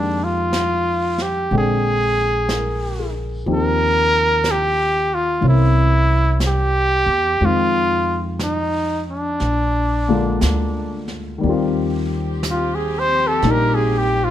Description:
jazz ballad; 60 BPM; 4/4; swing 66% on 8ths; Eb major; A4 = 439 Hz
warm trumpet; melody; 0.0-14.3 s; D4 to C5; -19 LUFS; equal; plate reverb
warm grand piano; accompaniment; 0.0-14.3 s; D3 to G5; -23 LUFS; left 4 dB
upright bass; bass; 0.0-14.3 s; Bb1 to F2; -21 LUFS; equal
jazz brush drum kit; drums; 0.5-14.3 s; brushed snare drum, hi-hat, snare drum; -30 LUFS; right 1 dB
rich studio cello section; sustained chords; 11.4-14.3 s; F3 to G4; -27 LUFS; left 1 dB
light reverb; -16 LUFS; side -11 dB against mid
0.0-11.4 A section; 11.4-14.3 B section
trumpet solo 11.4-14.3
0.0 Fm11; 1.5 Bb13; 3.5 Eb69; 5.4 C7b9; 7.4 Fm7; 9.4 Bb7; 11.4 Eb69

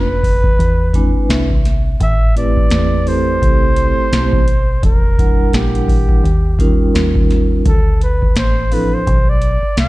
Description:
hip hop, jazz-hop; 85 BPM; 4/4; swing 58% on 16ths; A minor; A4 = 440 Hz
warm flugelhorn; melody; 0.0-9.9 s; G4 to F5; -20 LUFS; right 1 dB
vibraphone with soft mallets; accompaniment; 0.0-9.0 s; F3 to G#5; -19 LUFS; right 1 dB
deep dub fingered electric bass; bass; 0.0-9.9 s; E1 to E2; -18 LUFS; equal
booming analog drum machine; drums; 0.2-9.9 s; hi-hat, kick drum, snare drum; -14 LUFS; equal; vintage 12-bit sampler grit
little or no reverb; dark, warm production; -11 LUFS; side -18 dB against mid
0.0-9.9 A section
vibraphone fill 0.6-2.0
0.0 B(b5, no3); 0.6 E7b13; 2.0 Am9; 4.8 Em7b5; 6.2 D#9; 7.7 D7(no3)

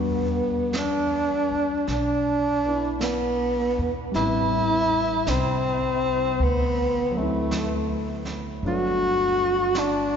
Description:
jazz ballad; 53 BPM; 4/4; swing 68% on 8ths; E minor; A4 = 436 Hz
breathy tenor saxophone; melody; 0.0-10.2 s; A3 to F#4; -23 LUFS; equal
warm grand piano; accompaniment; 0.0-10.2 s; F#3 to B4; -31 LUFS; left 3 dB
upright bass; bass; 0.0-10.2 s; G1 to E2; -30 LUFS; equal
vintage brush drum kit; drums; 0.7-10.2 s; brushed snare drum, hi-hat, snare drum; -37 LUFS; right 4 dB
wet cathedral reverb, RT60 4.9 s; recorded in a church or concert hall, nothing above 7.5 kHz; -21 LUFS; side -7 dB against mid
0.0-10.2 A section
0.0 Em9; 4.1 Am9; 6.4 D7; 8.6 Gmaj7

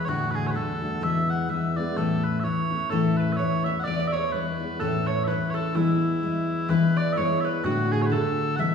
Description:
celtic folk, Celtic polka; 127 BPM; 2/4; swing 57% on 8ths; E mixolydian; A4 = 441 Hz
mellow small bagpipes; melody; 0.0-8.7 s; E4 to F#5; -29 LUFS; equal
picked steel-string acoustic guitar; accompaniment; 0.0-8.7 s; D2 to F#4; -25 LUFS; left 3 dB
muted cello; drone; 0.0-6.8 s; E2; -35 LUFS; equal
vintage hollow-body jazz guitar; second line; 2.9-8.7 s; E4 to E5; -29 LUFS; right 6 dB
wet recital hall reverb, RT60 1.6 s; recorded in a church or concert hall, small room ambience; -22 LUFS; side -6 dB against mid
0.0-6.7 A section; 6.7-8.7 A section
0.1 D; 1.0 E; 2.0 A; 3.9 E; 4.8 A; 5.7 E; 7.6 D

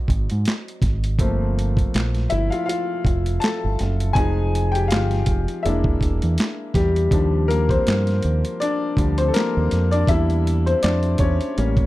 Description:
R&B, neo-soul; 81 BPM; 4/4; swing 57% on 16ths; A4 = 440 Hz
clear baby grand piano; accompaniment; 0.0-11.9 s; F3 to A5; -23 LUFS; left 2 dB
deep dub fingered electric bass; bass; 0.1-11.9 s; E1 to G#2; -20 LUFS; right 1 dB
boom bap sampler-style drum kit; drums; 0.1-11.9 s; handclaps, hi-hat, kick drum, snare drum; -22 LUFS; right 1 dB
digital ambience; dry, close 1970s-style studio recording; -18 LUFS; side -17 dB against mid
0.0-11.9 A section
grand piano solo 0.0-11.9
0.0 G#7#11; 1.2 Gm11; 4.2 Fm9; 5.6 E7#11; 7.1 Ebmaj9; 10.1 Em7b5

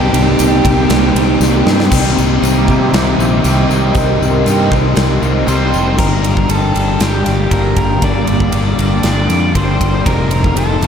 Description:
rock, shoegaze and dream pop; 118 BPM; 4/4; straight; A4 = 440 Hz
octave-fuzz lead guitar; melody; 0.0-1.4, 5.5-10.9 s; G4 to D5; -22 LUFS; right 1 dB; distortion, ping-pong delay
deep dark ambient pad; sustained chords; 0.0-10.9 s; Bb3 to Eb6; -19 LUFS; right 2 dB; chorus, built-in reverb, phaser
picked twelve-string acoustic guitar; arpeggios; 0.0-10.9 s; F4 to D5; -24 LUFS; right 3 dB; lush chorus, ping-pong delay
overdriven semi-hollow guitar; riff; 0.0-10.9 s; F2 to Eb4; -17 LUFS; left 5 dB; analog chorus
sludgy distorted guitar; riff; 0.0-6.0 s; C3 to C4; -23 LUFS; equal; overdrive
twangy electric guitar; riff; 0.0-6.0 s; C3 to G4; -24 LUFS; right 5 dB
fingered electric bass; bass; 0.0-10.9 s; F1 to C3; -16 LUFS; equal
huge arena drum kit; drums; 0.1-10.9 s; crash cymbal, kick drum, ride cymbal, snare drum; -18 LUFS; equal
tambourine; percussion; 0.4-5.8 s; -29 LUFS; left 10 dB
wet cathedral reverb, RT60 5.0 s; dreamy mix soaked in reverb; -10 LUFS; side -7 dB against mid
0.0-1.9 A section; 1.9-6.0 B section; 6.0-10.9 C section
drum fill 1.4-1.9
0.0 Cm7; 6.0 Gm7; 10.1 F7

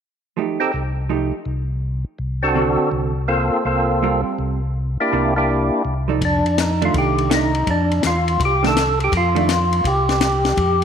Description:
soul jazz organ trio; 164 BPM; 4/4; swing 66% on 8ths; F mixolydian; A4 = 440 Hz
vintage hollow-body jazz guitar; accompaniment; 0.4-9.5 s; D3 to D5; -24 LUFS; right 8 dB
percussive tonewheel organ; melody; 0.6-10.8 s; Bb3 to A4; -19 LUFS; equal; slow rotary speaker, overdrive, slapback echo
mellow tonewheel organ; bass; 0.7-10.8 s; C2 to F2; -21 LUFS; left 1 dB; slow rotary speaker
compact cocktail drum kit; drums; 6.2-10.8 s; hi-hat, kick drum, ride cymbal, snare drum; -23 LUFS; left 6 dB
moderate echo chamber reverb, RT60 1.8 s, small room ambience; 1960s-style stereo with parts hard left and right; -17 LUFS; side -7 dB against mid
0.4-6.2 A section; 6.2-10.8 B section
0.4 F9; 1.8 D7/C; 3.3 Gm11; 4.7 C9; 6.2 F13

